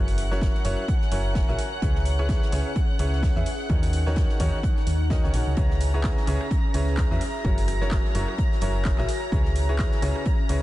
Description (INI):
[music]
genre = piano house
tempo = 128 BPM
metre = 4/4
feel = swing 57% on 16ths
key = C# dorian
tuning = A4 = 443 Hz
[part]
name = rich chamber violin section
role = sustained chords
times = 0.0-10.6 s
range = F#5 to A#6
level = -35 LUFS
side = equal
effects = sidechain pumping
[part]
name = bright upright piano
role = riff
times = 0.0-10.6 s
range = C#3 to E5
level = -31 LUFS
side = equal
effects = sidechain pumping, ping-pong delay
[part]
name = solid FM bass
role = bass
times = 0.0-10.6 s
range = F#1 to E2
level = -25 LUFS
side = equal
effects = tube saturation, sidechain pumping
[part]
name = warbly tape-like pad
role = texture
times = 0.0-10.6 s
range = C#4 to A#5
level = -35 LUFS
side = left 1 dB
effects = chorus, built-in reverb, sidechain pumping
[part]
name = punchy analog drum machine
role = drums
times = 0.1-10.6 s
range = handclaps, hi-hat, rim click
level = -38 LUFS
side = equal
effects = none
[part]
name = tight funk drum kit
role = drums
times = 0.2-10.6 s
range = hi-hat, snare drum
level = -45 LUFS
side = right 2 dB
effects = sidechain pumping on hats, high-pass filter on hats, high-pass filter on snare, high-pass filter on room
[part]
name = electronic kick drum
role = drums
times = 0.4-10.4 s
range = none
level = -24 LUFS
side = equal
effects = overdrive
[sound]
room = light reverb, studio reverb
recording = nothing above 10.8 kHz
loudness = -21 LUFS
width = side -16 dB against mid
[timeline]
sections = 0.0-10.6 A section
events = none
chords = 0.0 F#7; 1.6 C#m7; 3.7 D#m7; 5.6 C#m7; 7.2 F#7; 9.1 C#m7